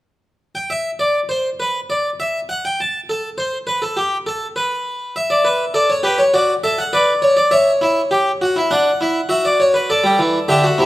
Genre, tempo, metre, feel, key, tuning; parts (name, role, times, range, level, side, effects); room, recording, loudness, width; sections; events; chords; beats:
classical, baroque-style 3-part fugue for harpsichord; 101 BPM; 4/4; straight; A4 = 440 Hz
harpsichord; solo; 0.6-10.9 s; C3 to A5; -15 LUFS; equal
moderate recital hall reverb, RT60 1.4 s; close, detailed microphones; -15 LUFS; side -16 dB against mid
0.4-10.9 A section
0.4 N.C.; 5.2 D5; 6.3 D/F#; 7.5 C#dim; 8.7 D; 9.9 G5
| 0.40 1.00 1.60 2.19 | 2.79 3.38 3.98 4.57 | 5.16 5.75 6.34 6.93 | 7.51 8.11 8.71 9.30 | 9.89 10.49